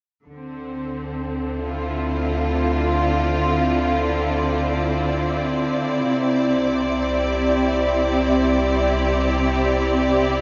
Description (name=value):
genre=ambient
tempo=62 BPM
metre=3/4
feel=straight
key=D minor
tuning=A4 = 439 Hz
part: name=rich symphonic string section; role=sustained chords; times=0.3-10.4 s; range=C3 to D5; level=-22 LUFS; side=equal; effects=shimmer reverb
part: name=round analog bass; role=bass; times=0.3-10.4 s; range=C2 to D2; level=-29 LUFS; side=equal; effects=none
room=wet huge ambient reverb, RT60 8.2 s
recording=nothing above 7.5 kHz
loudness=-21 LUFS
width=mono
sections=0.3-10.4 A section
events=none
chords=0.3 Dm7; 6.1 Cadd9